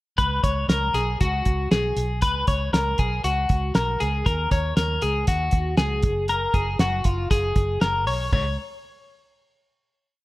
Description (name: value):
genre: jangly indie pop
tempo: 118 BPM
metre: 4/4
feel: straight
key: unclear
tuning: A4 = 440 Hz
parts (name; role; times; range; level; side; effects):
- twelve-string electric guitar; arpeggios; 0.2-8.6 s; F4 to Db5; -24 LUFS; left 2 dB; spring reverb
- vintage muted fingered electric bass; bass; 0.2-8.6 s; Gb1 to Eb2; -26 LUFS; equal; none
- cloth-damped thuddy drum kit; drums; 0.2-8.4 s; china cymbal, hi-hat, kick drum, snare drum, toms; -23 LUFS; equal; none
room: light reverb, small room ambience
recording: none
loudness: -20 LUFS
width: side -18 dB against mid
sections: 0.2-8.3 verse; 8.3-10.2 final note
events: none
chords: 0.2 Db7sus4; 4.3 Ebm7; 6.0 Gb; 8.3 N.C.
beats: | 0.18 0.69 1.21 1.72 | 2.23 2.73 3.24 3.75 | 4.26 4.77 5.28 5.79 | 6.29 6.80 7.31 7.82 | 8.32